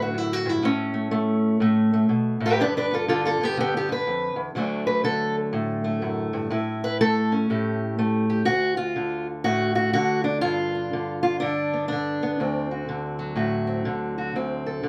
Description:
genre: acoustic country blues, solo or duo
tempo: 122 BPM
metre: 4/4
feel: swing 63% on 8ths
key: D major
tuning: A4 = 440 Hz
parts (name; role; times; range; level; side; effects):
- fingerpicked steel-string acoustic guitar; solo; 0.0-14.9 s; D2 to B4; -24 LUFS; equal; none
room: moderate studio reverb, RT60 0.6 s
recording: none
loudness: -24 LUFS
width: mono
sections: 0.0-8.5 A section; 8.5-14.9 B section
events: steel-string acoustic guitar solo 0.0-8.5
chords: 0.0 D; 0.6 A; 2.6 G7; 4.5 D; 6.5 A7; 8.5 D5; 10.4 G7; 12.4 D7

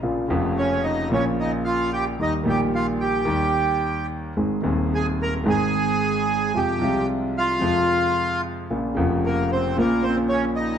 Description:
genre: tango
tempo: 111 BPM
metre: 4/4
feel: rubato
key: unclear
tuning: A4 = 440 Hz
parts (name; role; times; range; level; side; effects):
- clear concert grand piano; accompaniment; 0.0-10.8 s; Eb1 to Ab4; -22 LUFS; equal; none
- bandoneon; melody; 0.6-10.8 s; Bb3 to Bb5; -23 LUFS; right 2 dB; none
room: moderate large studio reverb, RT60 1.2 s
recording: dark, warm production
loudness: -20 LUFS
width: side -8 dB against mid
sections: 0.0-10.8 A section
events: none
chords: 0.0 Bbm; 2.2 Eb; 4.4 Ab; 6.6 Fm; 8.7 Bbm

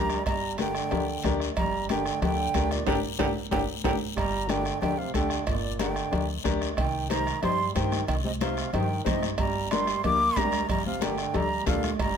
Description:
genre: latin, cumbia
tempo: 184 BPM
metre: 4/4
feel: straight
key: G minor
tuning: A4 = 440 Hz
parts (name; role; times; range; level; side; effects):
- breathy mellow jazz flute; melody; 0.0-12.2 s; D5 to D6; -30 LUFS; right 1 dB; none
- bright trombone; second line; 0.0-12.2 s; Bb2 to Bb3; -33 LUFS; right 6 dB; none
- clear upright piano; accompaniment; 0.0-11.9 s; D4 to C5; -31 LUFS; left 7 dB; none
- upright bass; bass; 0.0-12.2 s; G1 to G2; -33 LUFS; equal; none
- bombo; percussion; 0.1-12.2 s; none; -33 LUFS; right 2 dB; none
- guiro; percussion; 0.1-12.2 s; none; -40 LUFS; left 7 dB; none
- congas; percussion; 0.3-12.2 s; none; -34 LUFS; left 3 dB; none
- cowbell and timbales; percussion; 0.3-12.2 s; none; -36 LUFS; right 4 dB; none
room: moderate studio reverb, RT60 0.8 s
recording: none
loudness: -24 LUFS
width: side -7 dB against mid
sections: 0.0-4.2 A section; 4.2-12.2 A section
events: band accent 2.9-4.2; drum fill 3.4-4.2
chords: 0.0 Gm; 6.8 Cm; 9.4 Gm

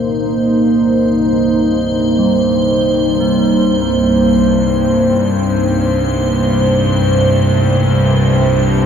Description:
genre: dark ambient drone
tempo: free time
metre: none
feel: none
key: C dorian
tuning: A4 = 439 Hz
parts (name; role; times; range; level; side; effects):
- deep dark ambient pad; sustained chords; 0.0-8.9 s; A3 to C5; -16 LUFS; right 1 dB; chorus, built-in reverb
- bowed-like drone; drone; 0.0-8.9 s; C2 to G2; -16 LUFS; left 1 dB; built-in reverb
- icy glass pad; texture; 0.0-8.9 s; C5; -19 LUFS; right 1 dB; chorus, built-in reverb
- quartz singing bowl; arpeggios; 2.2-8.9 s; G3 to Bb3; -19 LUFS; right 1 dB; ping-pong delay
room: wet cathedral reverb, RT60 6.5 s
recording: dark, warm production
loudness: -11 LUFS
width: side -8 dB against mid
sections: 0.0-8.9 A section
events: fade-in on synth drone 0.0-8.9; fade-out on ambient pad 0.0-8.9; fade-out on singing bowl 0.0-8.9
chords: 0.0 Cm7; 5.7 F

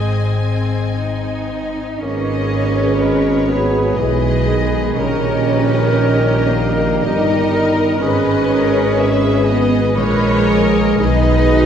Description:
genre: classical, slow romantic movement for symphony orchestra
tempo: 60 BPM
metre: 3/4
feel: uneven beats, rubato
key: G# minor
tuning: A4 = 441 Hz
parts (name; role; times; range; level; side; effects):
- rich studio violin section; melody; 0.0-11.7 s; C#5 to Ab5; -28 LUFS; left 3 dB; none
- mellow clarinet; second line; 0.0-11.7 s; G#4 to B4; -26 LUFS; left 3 dB; none
- rich studio violin section; second line; 0.0-11.7 s; G#4 to Eb5; -26 LUFS; left 2 dB; none
- rich studio viola section; accompaniment; 0.0-11.7 s; C4 to B4; -25 LUFS; right 1 dB; none
- rich studio cello section; bass; 0.0-11.7 s; Ab2 to Eb4; -20 LUFS; right 2 dB; none
- rich studio double bass section; bass; 0.0-11.7 s; G1 to B1; -20 LUFS; equal; none
- mellow hollow silver concert flute; second line; 0.4-11.7 s; G#4 to D#5; -25 LUFS; left 2 dB; none
- mellow cor anglais; second line; 2.0-11.7 s; G#4 to D#5; -27 LUFS; right 1 dB; none
- mellow bassoon; accompaniment; 2.0-11.7 s; C#3 to B3; -24 LUFS; equal; none
- mellow French horn section; sustained chords; 2.0-11.7 s; G#4 to D#5; -26 LUFS; left 2 dB; none
- warm trombone section; sustained chords; 2.0-11.7 s; D#3 to G#3; -26 LUFS; right 2 dB; none
- mellow tuba; bass; 2.0-11.7 s; G1 to B1; -22 LUFS; equal; none
room: wet scoring stage reverb, RT60 1.9 s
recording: heard from further back in the room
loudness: -13 LUFS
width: side -8 dB against mid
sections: 0.0-2.0 A section; 2.0-11.7 B section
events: none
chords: 0.0 Ab; 2.0 G#m; 5.0 D#7/A#; 8.0 G#m; 11.0 G#m/B

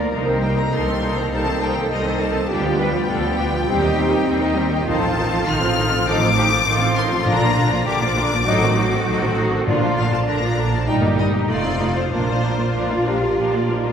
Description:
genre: quick classical-period movement for symphony orchestra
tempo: 100 BPM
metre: 4/4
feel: rubato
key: Bb major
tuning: A4 = 442 Hz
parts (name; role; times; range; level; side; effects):
- clear studio violin section; melody; 0.0-13.9 s; Bb4 to F6; -24 LUFS; left 5 dB; none
- clear studio violin section; second line; 0.0-13.9 s; D4 to Eb5; -27 LUFS; left 4 dB; none
- rich studio viola section; accompaniment; 0.0-13.9 s; D3 to G4; -24 LUFS; right 2 dB; none
- mellow French horn section; sustained chords; 0.0-13.9 s; F3 to G4; -25 LUFS; left 1 dB; none
- rich studio cello section; bass; 0.0-13.9 s; D4 to B4; -25 LUFS; right 1 dB; none
- warm studio double bass section; bass; 0.0-13.9 s; F1 to Eb2; -23 LUFS; right 2 dB; none
- timpani; percussion; 7.3-10.5 s; Bb2; -28 LUFS; left 1 dB; none
room: wet concert hall reverb, RT60 2.3 s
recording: heard from further back in the room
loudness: -17 LUFS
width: side -8 dB against mid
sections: 0.0-13.9 A section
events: none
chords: 0.1 Cm7; 2.5 G7/D; 3.7 Cm/Eb; 4.9 F7/A; 7.3 Bb; 8.5 Adim7; 9.7 Bb; 10.9 Eb/G; 11.5 F7; 12.1 Bb

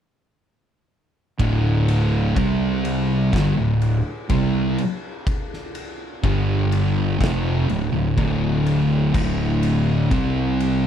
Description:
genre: stoner and doom metal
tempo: 62 BPM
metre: 4/4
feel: straight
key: D minor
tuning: A4 = 440 Hz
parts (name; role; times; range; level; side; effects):
- thick fuzz guitar; riff; 1.4-10.9 s; D2 to C4; -23 LUFS; left 7 dB; distortion
- thick fuzz guitar; riff; 1.4-10.9 s; D2 to C4; -22 LUFS; right 6 dB; distortion
- fuzz fingered electric bass; bass; 1.4-10.9 s; D1 to C2; -24 LUFS; equal; overdrive
- oversized low-tuned drum kit; drums; 1.4-10.8 s; crash cymbal, kick drum, ride cymbal, snare drum; -27 LUFS; equal; none
room: small room reverb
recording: none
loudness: -18 LUFS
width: side -9 dB against mid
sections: 1.4-10.9 A section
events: none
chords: 1.4 D5; 2.4 C5; 3.3 D5; 6.2 G5; 7.2 Dm; 10.1 C5

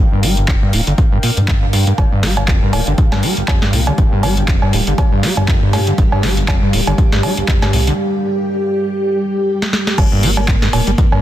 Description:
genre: acid house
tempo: 120 BPM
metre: 4/4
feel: swing 56% on 16ths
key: G minor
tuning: A4 = 440 Hz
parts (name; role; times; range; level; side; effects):
- overdriven acid bass; riff; 0.0-11.2 s; G1 to G3; -18 LUFS; equal; distortion, wide subtle chorus, sidechain pumping
- round analog bass; bass; 0.0-10.9 s; D1 to G2; -18 LUFS; equal; sidechain pumping
- airy breathy pad; texture; 0.0-8.0 s; D4 to G5; -28 LUFS; right 1 dB; chorus, phaser, sidechain pumping
- booming analog drum machine; drums; 0.2-11.2 s; cowbell, crash cymbal, handclaps, hi-hat, snare drum; -20 LUFS; right 1 dB; studio reverb
- electronic kick drum; drums; 0.5-11.1 s; none; -14 LUFS; equal; studio reverb
- string machine, full ensemble; sustained chords; 2.0-11.2 s; G3 to Bb4; -20 LUFS; equal; ensemble chorus, sidechain pumping
room: little or no reverb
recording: dense, heavily limited modern master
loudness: -12 LUFS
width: side -13 dB against mid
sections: 0.0-10.0 A section; 10.0-11.2 B section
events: fade-in on analog synth pad 0.0-10.0; break 8.0-10.0; drum fill 9.6-10.0; drop 10.0-11.2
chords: 0.0 Gm7; 10.0 Gm

